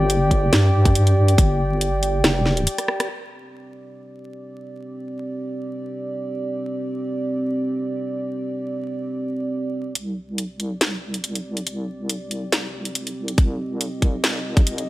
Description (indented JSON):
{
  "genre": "deep dubstep",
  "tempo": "140 BPM",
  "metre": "4/4",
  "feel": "swing 54% on 16ths, half-time",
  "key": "C minor",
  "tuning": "A4 = 437 Hz",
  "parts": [
    { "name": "dark analog pad", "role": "sustained chords", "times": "0.0-14.9 s", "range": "C4 to G5", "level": "-26 LUFS", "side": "right 1 dB", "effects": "chorus" },
    { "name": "deep soft wobble bass", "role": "bass", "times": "0.0-2.7, 10.0-14.9 s", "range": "F1 to G2", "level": "-21 LUFS", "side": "equal", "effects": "chorus, high-pass filter" },
    { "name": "garage drum kit", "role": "drums", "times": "0.1-3.1, 10.0-14.9 s", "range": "hi-hat, rim click, snare drum", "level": "-22 LUFS", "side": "equal", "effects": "high-pass filter on hats, low-pass filter on hats, studio reverb, high-pass filter on snare, low-pass filter on snare" },
    { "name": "electronic kick drum", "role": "drums", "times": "0.3-1.5, 13.4-14.6 s", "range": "none", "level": "-16 LUFS", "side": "equal", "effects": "studio reverb" }
  ],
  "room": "light reverb, digital ambience",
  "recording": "vinyl crackle",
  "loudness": "-20 LUFS",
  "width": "side -17 dB against mid",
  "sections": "0.0-3.1 A section; 3.1-10.0 B section; 10.0-14.9 C section",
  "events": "drop 0.0-3.1; break 2.7-3.1; drum fill 2.8-3.1; band accent 3.0; filter sweep on analog synth pad 3.1-10.0, 10.0-14.9; build-up 10.0-14.9",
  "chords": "0.0 G5; 3.1 C5; 10.0 Cm",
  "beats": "0.10 0.53 0.95 | 1.38 1.81 2.24 2.67 | 3.10 3.53 3.95 4.38 | 4.81 5.24 5.67 6.10 | 6.53 6.95 7.38 7.81 | 8.24 8.67 9.10 9.53 | 9.95 10.38 10.81 11.24 | 11.67 12.10 12.53 12.95 | 13.38 13.81 14.24 14.67"
}